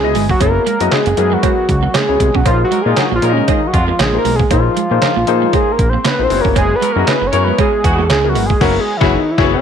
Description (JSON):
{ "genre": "early-eighties boogie funk", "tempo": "117 BPM", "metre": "4/4", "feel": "swing 56% on 16ths", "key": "unclear", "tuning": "A4 = 440 Hz", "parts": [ { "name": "fat analog lead", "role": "melody", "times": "0.0-9.6 s", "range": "Db4 to Db5", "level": "-16 LUFS", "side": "right 1 dB", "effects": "slapback echo" }, { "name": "warm grand piano", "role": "accompaniment", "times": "0.0-9.6 s", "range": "Bb3 to Eb5", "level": "-19 LUFS", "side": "left 12 dB", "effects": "none" }, { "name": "fat analog bass", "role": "bass", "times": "0.0-9.6 s", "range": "Gb1 to Bb2", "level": "-17 LUFS", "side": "equal", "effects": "none" }, { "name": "detuned 8-bit digital drum machine", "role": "drums", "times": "0.1-9.5 s", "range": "crash cymbal, handclaps, hi-hat, kick drum, snare drum", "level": "-17 LUFS", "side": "equal", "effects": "overdrive" }, { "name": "clean electric guitar", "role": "riff", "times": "0.2-8.6 s", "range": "Ab3 to Db4", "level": "-24 LUFS", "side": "right 15 dB", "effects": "ensemble chorus" }, { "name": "cowbell", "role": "percussion", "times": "0.4-8.2 s", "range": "none", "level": "-24 LUFS", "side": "right 14 dB", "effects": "none" }, { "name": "mellow horn section", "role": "second line", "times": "2.7-9.5 s", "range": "C3 to Bb4", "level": "-23 LUFS", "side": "equal", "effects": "none" } ], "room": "light reverb, digital ambience", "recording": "1960s-style stereo with parts hard left and right", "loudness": "-11 LUFS", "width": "side -8 dB against mid", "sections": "0.0-9.6 A section", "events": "drum fill 8.6-9.6; band accent 8.6-9.6", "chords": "0.0 Gb9sus4; 2.5 Bb9sus4; 6.3 Gb9sus4" }